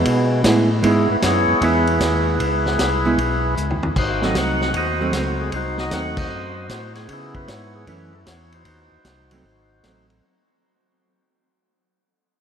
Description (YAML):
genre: soul jazz organ trio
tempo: 154 BPM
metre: 4/4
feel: swing 66% on 8ths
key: C# minor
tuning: A4 = 441 Hz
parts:
  - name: percussive tonewheel organ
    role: melody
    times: 0.0-10.1 s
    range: G#3 to F#5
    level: -22 LUFS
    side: equal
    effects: slow rotary speaker
  - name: tonewheel organ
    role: bass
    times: 0.0-10.2 s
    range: G#1 to C#3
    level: -23 LUFS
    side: equal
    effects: slow rotary speaker
  - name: vintage drum kit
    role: drums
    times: 0.1-10.2 s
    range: crash cymbal, hi-hat, kick drum, ride cymbal, snare drum, toms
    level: -25 LUFS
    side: equal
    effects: none
  - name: archtop guitar, miked and amplified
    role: accompaniment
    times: 0.4-10.2 s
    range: E3 to E4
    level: -23 LUFS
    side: right 3 dB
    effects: none
room: wet cathedral reverb, RT60 6.5 s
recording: in a vast, echoing space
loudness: -17 LUFS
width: side -8 dB against mid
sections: 0.0-10.2 A section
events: fade-out 0.0-10.2; drum fill 3.6-4.0; band accent 6.1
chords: 0.0 C#m7; 4.0 G#7b9; 7.1 C#m7; 7.9 F#m7; 8.7 G#7b9